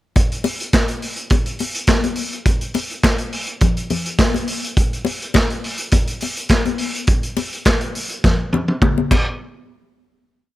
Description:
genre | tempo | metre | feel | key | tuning
disco | 104 BPM | 4/4 | straight | none | none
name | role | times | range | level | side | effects
vintage drum kit | drums | 0.2-9.3 s | crash cymbal, handclaps, hi-hat, kick drum, snare drum, toms | -17 LUFS | equal | none
congas | percussion | 0.2-9.4 s | none | -23 LUFS | left 5 dB | none
room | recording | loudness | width
little or no reverb | none | -17 LUFS | side -16 dB against mid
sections
0.2-9.4 verse; 9.4-10.6 final hit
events
drum fill 8.2-9.4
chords
none

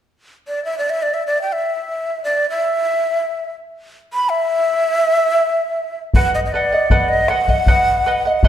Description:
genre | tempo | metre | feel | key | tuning
andean folk, Andean ensemble | free time | none | none | unclear | A4 = 440 Hz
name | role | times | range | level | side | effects
breathy large quena | melody | 0.5-8.5 s | D5 to B5 | -17 LUFS | equal | none
bombo | percussion | 6.1-8.5 s | none | -17 LUFS | left 1 dB | none
charango | accompaniment | 6.2-8.5 s | B4 to F#5 | -18 LUFS | right 2 dB | none
room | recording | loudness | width
wet recital hall reverb, RT60 1.3 s | dark, warm production | -15 LUFS | side -10 dB against mid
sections
0.1-6.2 A section; 6.2-8.5 B section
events
none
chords
0.1 N.C.; 6.2 B

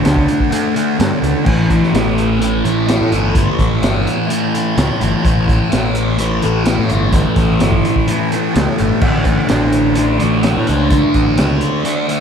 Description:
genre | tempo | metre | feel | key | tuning
psychedelic rock | 127 BPM | 4/4 | straight | A major | A4 = 443 Hz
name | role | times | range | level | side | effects
thick fuzz guitar | riff | 0.0-12.2 s | A2 to D4 | -15 LUFS | equal | distortion, phaser
fuzz picked electric bass | bass | 0.0-11.6 s | G1 to A2 | -18 LUFS | equal | overdrive
crunchy breakbeat drum kit | drums | 0.0-12.2 s | crash cymbal, hi-hat, kick drum, snare drum | -19 LUFS | equal | none
room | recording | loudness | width
light reverb, small room ambience | none | -12 LUFS | side -7 dB against mid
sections
0.0-12.2 A section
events
none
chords
0.0 D5; 1.5 A7(no3); 9.0 D5/A

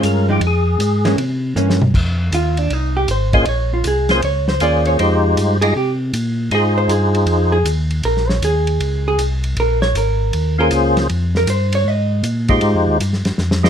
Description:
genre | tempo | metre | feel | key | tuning
soul jazz organ trio | 157 BPM | 4/4 | swing 66% on 8ths | F minor | A4 = 439 Hz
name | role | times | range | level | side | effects
percussive tonewheel organ | melody | 0.0-7.6, 10.6-13.7 s | Ab3 to Eb5 | -17 LUFS | left 1 dB | slow rotary speaker, chorus vibrato
vintage hollow-body jazz guitar | accompaniment | 0.0-12.3 s | E3 to Eb5 | -19 LUFS | right 2 dB | none
mellow tonewheel organ | bass | 0.0-13.7 s | Ab1 to C3 | -18 LUFS | equal | overdrive, chorus vibrato, slow rotary speaker
warm soul drum kit | drums | 0.0-13.7 s | crash cymbal, hi-hat, kick drum, ride cymbal, snare drum, toms | -23 LUFS | equal | none
room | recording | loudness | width
little or no reverb | close, detailed microphones | -14 LUFS | side -8 dB against mid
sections
0.0-1.9 A section; 1.9-13.7 A section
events
tonewheel organ solo 0.0-1.9; drum fill 1.5-1.9, 13.4-13.7; hollow-body jazz guitar solo 1.9-13.7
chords
0.4 Fm; 1.2 C7b9; 1.9 Fm7; 3.5 Bbm7; 5.0 Fm9; 8.0 Bbm7; 11.1 Fm9

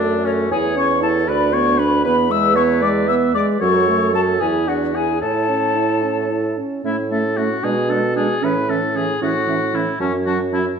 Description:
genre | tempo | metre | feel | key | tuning
quick classical-period movement for wind quintet | 76 BPM (dotted quarters) | 6/8 | straight | A major | A4 = 439 Hz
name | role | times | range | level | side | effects
hollow concert flute | melody | 0.0-10.6 s | C#5 to E6 | -22 LUFS | left 7 dB | none
warm oboe | second line | 0.0-10.7 s | C#4 to E5 | -23 LUFS | left 2 dB | none
mellow clarinet | accompaniment | 0.0-10.6 s | C#4 to D5 | -24 LUFS | right 8 dB | none
warm French horn | accompaniment | 0.0-10.6 s | E3 to E4 | -22 LUFS | right 1 dB | none
mellow bassoon | bass | 0.0-10.7 s | D2 to B2 | -21 LUFS | right 3 dB | none
room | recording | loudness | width
wet recital hall reverb, RT60 1.4 s | nothing above 10.3 kHz | -16 LUFS | side -6 dB against mid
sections
0.0-6.9 A section; 6.9-10.8 B section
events
none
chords
0.0 F#m; 0.5 C#m/E; 1.3 Bm/D; 2.0 E; 3.6 F#m; 4.4 E5; 5.2 A; 7.6 G#dim/B; 8.4 A; 10.0 F#5

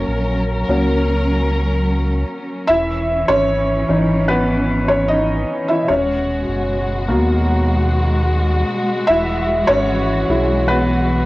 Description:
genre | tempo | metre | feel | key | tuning
pop ballad | 75 BPM | 4/4 | straight | G# minor | A4 = 440 Hz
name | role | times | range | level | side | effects
felt-muted upright piano | accompaniment | 0.0-11.3 s | E3 to E5 | -18 LUFS | equal | none
warm studio string section | sustained chords | 0.0-11.3 s | B2 to A#4 | -21 LUFS | equal | none
sub bass with octave | bass | 0.0-11.3 s | D#1 to D#2 | -20 LUFS | equal | none
room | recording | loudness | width
moderate studio reverb, RT60 0.6 s | home recording on cassette | -15 LUFS | side -19 dB against mid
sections
0.0-11.3 A section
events
felt piano solo 0.0-11.3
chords
0.0 F#; 2.7 C#madd9/E; 5.9 G#m7/D#; 9.1 Eadd9

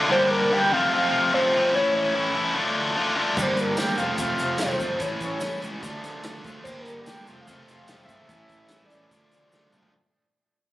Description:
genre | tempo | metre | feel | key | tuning
indie rock | 146 BPM | 4/4 | straight | D minor | A4 = 441 Hz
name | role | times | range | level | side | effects
distorted electric guitar | riff | 0.0-9.9 s | F2 to G4 | -24 LUFS | left 1 dB | overdrive
pulse-width lead | melody | 0.1-9.7 s | Bb4 to G5 | -24 LUFS | equal | chorus
combo organ | sustained chords | 3.4-9.9 s | E4 to Bb5 | -42 LUFS | right 2 dB | none
crunchy overdriven guitar | riff | 3.4-9.9 s | E3 to G4 | -32 LUFS | right 3 dB | lush chorus, digital delay
fuzz picked electric bass | bass | 3.4-9.9 s | F1 to D2 | -37 LUFS | equal | overdrive
vintage drum kit | drums | 3.4-9.9 s | crash cymbal, hi-hat, kick drum, snare drum, tambourine, toms | -34 LUFS | equal | none
tube shaker | percussion | 3.4-9.8 s | none | -44 LUFS | equal | none
room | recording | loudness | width
moderate studio reverb, RT60 0.7 s | recorded on a phone in the room, club reverb, compression | -21 LUFS | side -16 dB against mid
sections
0.0-9.9 A section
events
fade-out 0.0-9.9; drum fill 9.5-9.9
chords
0.1 Gm; 0.7 F; 1.7 A; 2.5 Dm; 3.4 Gm; 4.0 F; 5.0 A; 5.8 Dm7; 6.6 Gm; 7.3 F; 8.3 A; 9.1 Dm7

